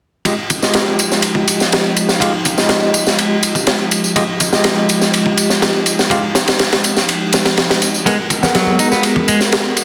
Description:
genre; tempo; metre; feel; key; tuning
breakbeat, breaks; 123 BPM; 4/4; straight; unclear; A4 = 440 Hz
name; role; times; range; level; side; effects
warbly tape-like pad; sustained chords; 0.9-9.8 s; F3 to Bb4; -24 LUFS; equal; chorus, built-in reverb, sidechain pumping
overdriven tine electric piano; stabs; 0.3-9.8 s; Ab3 to Gb5; -20 LUFS; equal; medium tremolo, low-pass filter, digital delay
crunchy breakbeat drum kit; drums; 0.3-9.8 s; kick drum, ride cymbal, snare drum; -17 LUFS; equal; high-pass filter on kick, high-pass filter on cymbals, high-pass filter on snare, high-pass filter on room
tambourine; drums; 0.3-9.8 s; none; -24 LUFS; equal; none
electric guitar at the edge of break-up; riff; 8.1-9.4 s; Gb3 to Eb4; -20 LUFS; equal; tube saturation, digital delay
congas; percussion; 8.4-9.4 s; none; -27 LUFS; equal; none
room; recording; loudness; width
moderate lush hall reverb, RT60 1.9 s, studio ambience; dense, heavily limited modern master; -14 LUFS; mono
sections
0.3-9.8 A section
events
none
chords
0.3 Fm9; 7.8 Abm9

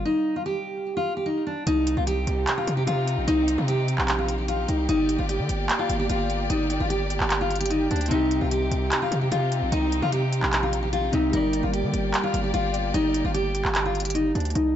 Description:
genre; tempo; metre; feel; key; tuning
hip hop, trap; 149 BPM; 4/4; half-time; C minor; A4 = 440 Hz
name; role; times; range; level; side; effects
fingerpicked steel-string acoustic guitar; melody; 0.0-14.8 s; D4 to G4; -25 LUFS; equal; low-pass filter, ping-pong delay
Celtic harp; accompaniment; 0.0-1.7, 8.1-14.6 s; C3 to D5; -33 LUFS; left 3 dB; low-pass filter
distorted 808-style bass; bass; 0.0-14.8 s; G1 to D3; -26 LUFS; equal; distortion
warm symphonic string section; sustained chords; 1.7-14.5 s; C3 to D5; -32 LUFS; left 1 dB; none
trap drum kit; drums; 1.7-14.6 s; handclaps, hi-hat; -28 LUFS; right 1 dB; none
room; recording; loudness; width
light reverb, small room ambience; dark, warm production, nothing above 7.7 kHz; -22 LUFS; side -10 dB against mid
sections
0.0-1.7 A section; 1.7-14.6 B section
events
break 0.1-1.7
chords
0.0 Gm; 1.7 Cm; 4.9 Gm; 8.1 Cm; 11.3 Gm

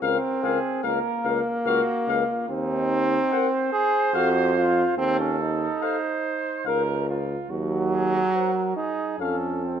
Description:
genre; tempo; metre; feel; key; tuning
classical, brass quintet; 72 BPM; 3/4; rubato; Bb minor; A4 = 443 Hz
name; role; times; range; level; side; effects
mellow trumpet; melody; 0.0-9.4 s; F5 to Gb5; -30 LUFS; left 9 dB; none
warm flugelhorn; second line; 0.0-9.8 s; Eb4 to C5; -29 LUFS; right 6 dB; none
mellow French horn; accompaniment; 0.0-9.4 s; A4 to C5; -30 LUFS; left 8 dB; none
warm trombone; accompaniment; 0.0-9.8 s; Gb3 to Ab4; -24 LUFS; right 1 dB; none
clear bass trombone; bass; 0.0-9.8 s; Db2 to F2; -28 LUFS; equal; none
room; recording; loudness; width
light reverb; close, detailed microphones; -22 LUFS; side -8 dB against mid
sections
0.0-9.8 A section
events
none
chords
0.0 Bbm/Db; 2.5 Cm/Eb; 4.1 F; 5.0 F7/Eb (rootless); 6.7 Bbm/Db; 7.5 Cdim/Eb (rootless); 9.2 F

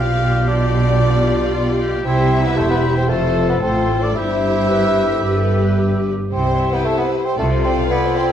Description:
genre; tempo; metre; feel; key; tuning
quick classical-period movement for symphony orchestra; 113 BPM; 4/4; rubato; C major; A4 = 438 Hz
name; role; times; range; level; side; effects
rich symphonic violin section; melody; 0.0-8.3 s; B4 to E5; -30 LUFS; left 2 dB; none
hollow concert flute; second line; 0.0-8.2 s; A5 to F6; -28 LUFS; left 1 dB; none
rich chamber violin section; second line; 0.0-8.2 s; A4 to F5; -28 LUFS; left 1 dB; none
warm oboe; second line; 0.0-8.3 s; E4 to C5; -29 LUFS; equal; none
rich chamber viola section; accompaniment; 0.0-8.3 s; E4 to G5; -25 LUFS; equal; none
warm bassoon; accompaniment; 0.0-8.3 s; A3 to F4; -22 LUFS; right 1 dB; none
mellow French horn section; sustained chords; 0.0-8.3 s; E4 to C5; -23 LUFS; left 6 dB; none
rich chamber double bass section; bass; 0.0-7.8 s; E1 to C2; -21 LUFS; right 2 dB; none
rich studio cello section; bass; 0.0-7.8 s; E2 to C3; -22 LUFS; right 2 dB; none
clear clarinet; second line; 4.7-6.3 s; G4 to B4; -28 LUFS; left 3 dB; none
room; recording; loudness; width
moderate recital hall reverb, RT60 1.5 s; dark, warm production; -15 LUFS; side -9 dB against mid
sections
0.0-8.3 A section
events
none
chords
0.0 G7/B; 2.1 C; 3.1 F; 4.2 C/G; 5.2 G; 6.3 C; 7.4 Dm7/C

